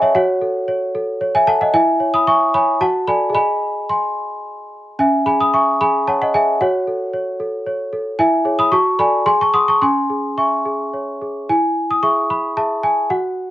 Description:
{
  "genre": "classical, lullaby for celesta",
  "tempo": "112 BPM",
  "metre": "3/4",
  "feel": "straight",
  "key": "C# minor",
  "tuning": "A4 = 440 Hz",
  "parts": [
    { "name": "worn celesta", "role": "solo", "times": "0.0-13.5 s", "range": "C#4 to D#6", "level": "-15 LUFS", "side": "equal", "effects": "none" }
  ],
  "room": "small room ambience",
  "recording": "dry, close 1970s-style studio recording",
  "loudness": "-15 LUFS",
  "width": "side -14 dB against mid",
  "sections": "0.0-11.5 A section; 11.5-13.5 B section",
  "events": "none",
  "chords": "0.1 F#m; 1.7 C#m/E; 2.8 D/F#; 3.3 G#; 5.0 C#m; 6.6 F#m; 8.2 C#m/E; 8.7 D/F#; 9.3 G#7; 9.8 C#m; 11.5 E",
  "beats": "| 0.14 0.68 1.21 | 1.74 2.27 2.80 | 3.35 3.89 4.44 | 4.99 5.53 6.07 | 6.60 7.13 7.66 | 8.18 8.71 9.26 | 9.81 10.38 10.93 | 11.49 12.03 12.57 | 13.10"
}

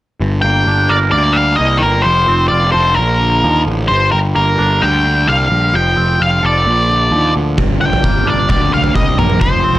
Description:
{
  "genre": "quiet-loud alternative rock",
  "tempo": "130 BPM",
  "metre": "4/4",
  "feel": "straight",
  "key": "G minor",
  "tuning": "A4 = 440 Hz",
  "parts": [
    { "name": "twangy electric guitar", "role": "arpeggios", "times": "0.2-9.8 s", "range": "G2 to Bb4", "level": "-20 LUFS", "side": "right 2 dB", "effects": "phaser, slapback echo" },
    { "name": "fuzz picked electric bass", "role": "bass", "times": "0.2-9.8 s", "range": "F1 to Eb2", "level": "-15 LUFS", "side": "equal", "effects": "overdrive" },
    { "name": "octave-fuzz lead guitar", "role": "melody", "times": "0.4-9.8 s", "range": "Bb4 to G5", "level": "-14 LUFS", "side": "left 1 dB", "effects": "distortion" },
    { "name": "oversized low-tuned drum kit", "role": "drums", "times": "7.6-9.8 s", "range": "kick drum, toms", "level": "-14 LUFS", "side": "equal", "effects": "none" }
  ],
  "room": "light reverb",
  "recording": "none",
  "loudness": "-11 LUFS",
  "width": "side -15 dB against mid",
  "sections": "0.2-9.8 A section",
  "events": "none",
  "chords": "0.2 Gm; 2.0 F; 3.0 Bb; 3.9 Gm; 5.7 Fadd9; 6.7 Bb; 7.6 Gm",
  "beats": "| 0.20 0.67 1.13 1.59 | 2.05 2.51 2.97 3.43 | 3.90 4.36 4.82 5.28 | 5.74 6.20 6.66 7.12 | 7.58 8.04 8.50 8.96 | 9.42"
}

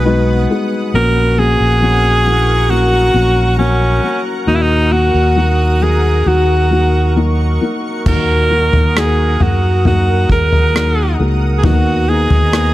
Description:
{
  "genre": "pop ballad",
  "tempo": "67 BPM",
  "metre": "4/4",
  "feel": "straight",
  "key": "unclear",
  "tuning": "A4 = 440 Hz",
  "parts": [
    { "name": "edgy alto saxophone", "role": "melody", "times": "0.0-12.7 s", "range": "C#4 to B4", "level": "-16 LUFS", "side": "right 1 dB", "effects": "none" },
    { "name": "felt-muted upright piano", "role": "accompaniment", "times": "0.0-12.7 s", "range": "A#2 to G#4", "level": "-18 LUFS", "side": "left 3 dB", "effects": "none" },
    { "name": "shimmering ambient pad", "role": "sustained chords", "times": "0.0-12.7 s", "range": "B3 to D#6", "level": "-24 LUFS", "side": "equal", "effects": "chorus, built-in reverb" },
    { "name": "fingered electric bass", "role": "bass", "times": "0.0-12.7 s", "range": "A#1 to F#2", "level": "-14 LUFS", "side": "equal", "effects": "none" },
    { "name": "unplugged drum kit", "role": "drums", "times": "8.1-12.7 s", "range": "crash cymbal, kick drum, rim click, toms", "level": "-16 LUFS", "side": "equal", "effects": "none" }
  ],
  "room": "small room ambience",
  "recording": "none",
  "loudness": "-11 LUFS",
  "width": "side -16 dB against mid",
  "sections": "0.0-8.1 A section; 8.1-12.7 B section",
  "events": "none",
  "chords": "0.0 B6; 0.9 F#/A#; 4.5 D#m; 11.6 Bmaj7",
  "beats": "0.05 | 0.94 1.82 2.71 3.58 | 4.47 5.37 6.26 7.16 | 8.06 8.96 9.85 10.75 | 11.64 12.53"
}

